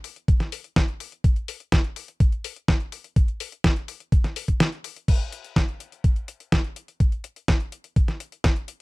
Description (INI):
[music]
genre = italo disco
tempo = 125 BPM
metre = 4/4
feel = straight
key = none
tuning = none
[part]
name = detuned 8-bit digital drum machine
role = drums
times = 0.0-8.8 s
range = crash cymbal, hi-hat, snare drum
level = -25 LUFS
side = equal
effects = none
[part]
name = electronic kick drum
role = drums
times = 0.3-8.5 s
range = none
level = -20 LUFS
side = equal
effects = none
[sound]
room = little or no reverb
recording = dry, close 1970s-style studio recording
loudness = -22 LUFS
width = side -23 dB against mid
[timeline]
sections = 0.0-5.1 A section; 5.1-8.8 B section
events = break 4.6-5.1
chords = none